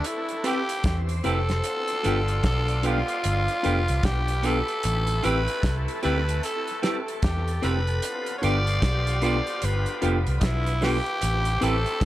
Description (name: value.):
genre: lovers rock reggae.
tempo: 75 BPM.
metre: 4/4.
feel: swing 62% on 16ths.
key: A minor.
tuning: A4 = 440 Hz.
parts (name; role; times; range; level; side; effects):
growling tenor saxophone; melody; 0.0-12.1 s; D#4 to D5; -28 LUFS; equal; tape echo.
clear horn section; second line; 0.0-12.1 s; C3 to F4; -37 LUFS; left 2 dB; none.
soft string machine; second line; 0.0-12.1 s; G4 to D6; -37 LUFS; equal; ensemble chorus.
damped 70s drum kit; drums; 0.0-12.1 s; hi-hat, kick drum, snare drum; -29 LUFS; equal; tape echo.
mellow tine electric piano; accompaniment; 0.4-11.8 s; C4 to B4; -32 LUFS; left 2 dB; fast stereo tremolo, tape echo.
clean electric guitar; stabs; 0.4-11.8 s; B3 to G4; -31 LUFS; right 4 dB; none.
vintage muted fingered electric bass; bass; 0.8-12.1 s; F1 to E2; -25 LUFS; equal; none.
room: light reverb.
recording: none.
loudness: -22 LUFS.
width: side -14 dB against mid.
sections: 0.0-12.1 A section.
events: none.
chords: 0.0 Am7; 1.6 G7; 4.8 Am7; 8.0 G7; 11.2 Am7.